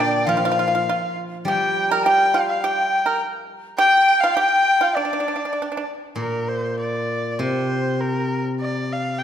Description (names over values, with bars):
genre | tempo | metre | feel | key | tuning
chinese traditional, Chinese chamber ensemble | 101 BPM | 2/4 | rubato | unclear | A4 = 439 Hz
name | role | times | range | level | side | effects
rich erhu | melody | 0.0-9.2 s | Bb4 to Bb5 | -22 LUFS | equal | none
hollow dizi | second line | 0.0-5.9 s | D5 to Bb5 | -21 LUFS | left 3 dB | none
pipa | second line | 0.0-5.8 s | D4 to Bb4 | -24 LUFS | right 4 dB | none
steel-string zither | accompaniment | 0.0-3.2, 6.2-9.2 s | Bb2 to G3 | -25 LUFS | equal | none
room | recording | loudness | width
wet scoring stage reverb, RT60 2.0 s | none | -18 LUFS | side -9 dB against mid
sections
0.0-6.2 A section; 6.2-9.2 B section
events
none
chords
none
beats
| 0.27 0.86 | 1.47 2.06 | 2.63 3.21 | 3.79 4.38 | 4.96 5.56 | 6.18 6.79 | 7.41 8.01 | 8.61 9.20